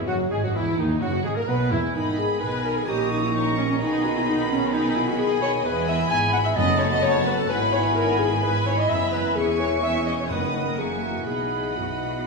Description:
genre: quick classical-period movement for symphony orchestra.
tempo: 129 BPM.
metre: 4/4.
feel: rubato.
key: B major.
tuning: A4 = 440 Hz.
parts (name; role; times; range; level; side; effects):
dark clarinet; second line; 0.0-12.3 s; C#4 to G#5; -26 LUFS; left 2 dB; none.
mellow large flute ensemble; second line; 0.0-12.3 s; D#4 to C#6; -31 LUFS; right 1 dB; none.
mellow bassoon; accompaniment; 0.0-12.3 s; D#3 to B3; -32 LUFS; right 2 dB; none.
rich studio viola section; accompaniment; 0.0-12.3 s; C#4 to G#5; -29 LUFS; right 1 dB; none.
warm French horn section; sustained chords; 0.0-12.3 s; D#3 to A4; -31 LUFS; left 4 dB; none.
rich studio cello section; bass; 0.0-12.3 s; D#2 to B2; -30 LUFS; right 2 dB; none.
rich studio violin section; melody; 0.1-12.3 s; D#4 to D#6; -34 LUFS; left 2 dB; none.
rich studio violin section; second line; 0.1-12.3 s; D#4 to B5; -33 LUFS; left 6 dB; none.
warm oboe; second line; 0.1-12.3 s; D#4 to A#5; -34 LUFS; equal; none.
rich studio double bass section; bass; 0.1-12.3 s; E1 to D#2; -31 LUFS; right 4 dB; none.
timpani; percussion; 6.6-7.2, 10.3-10.7 s; F#2; -32 LUFS; left 1 dB; none.
room: wet scoring stage reverb, RT60 1.8 s.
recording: studio ambience.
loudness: -20 LUFS.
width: side -3 dB against mid.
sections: 0.0-12.3 A section.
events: none.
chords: 0.1 B; 2.0 G#m; 2.9 D#5/A#; 3.8 G#m/B; 5.7 E; 6.6 B5/F#; 7.5 E/G#; 9.4 C#m/E; 10.3 B/F#; 10.8 F#7; 11.3 B.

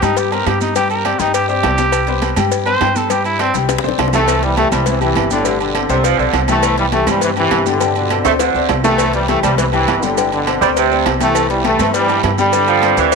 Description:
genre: latin, salsa.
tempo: 204 BPM.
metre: 4/4.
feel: straight.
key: C major.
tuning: A4 = 440 Hz.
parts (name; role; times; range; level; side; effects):
warm trumpet; melody; 0.0-3.5 s; C4 to C5; -19 LUFS; right 2 dB; none.
bright upright piano; accompaniment; 0.0-13.2 s; G3 to G5; -19 LUFS; left 12 dB; none.
upright bass; bass; 0.0-13.2 s; G1 to G2; -22 LUFS; right 2 dB; none.
agogo bells and timbales; percussion; 0.0-13.2 s; none; -22 LUFS; right 15 dB; none.
congas; percussion; 0.0-13.2 s; none; -27 LUFS; right 2 dB; none.
cowbell and bongos; percussion; 0.0-13.2 s; none; -24 LUFS; left 13 dB; none.
guiro; percussion; 0.0-13.2 s; none; -30 LUFS; right 16 dB; none.
maracas; percussion; 0.0-13.2 s; none; -30 LUFS; right 17 dB; none.
bright trombone section; melody; 4.1-13.2 s; A2 to A3; -17 LUFS; right 1 dB; none.
bright saxophone section; second line; 5.9-13.2 s; C3 to A3; -19 LUFS; right 12 dB; none.
room: moderate plate reverb, RT60 3.8 s.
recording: 1960s-style stereo with parts hard left and right.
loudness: -13 LUFS.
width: side -4 dB against mid.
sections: 0.0-4.3 A section; 4.3-13.2 B section.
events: trumpet solo 0.0-4.3; drum fill 3.7-4.3, 8.3-9.0.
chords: 0.0 C5; 0.8 Gsus4; 1.9 C5; 3.1 Gsus4; 4.3 Cmaj7; 5.5 Gsus24; 6.6 Cmaj7; 7.8 Gsus24; 9.0 Cmaj7; 10.2 Gsus24; 11.4 Cmaj7; 12.5 G7sus4.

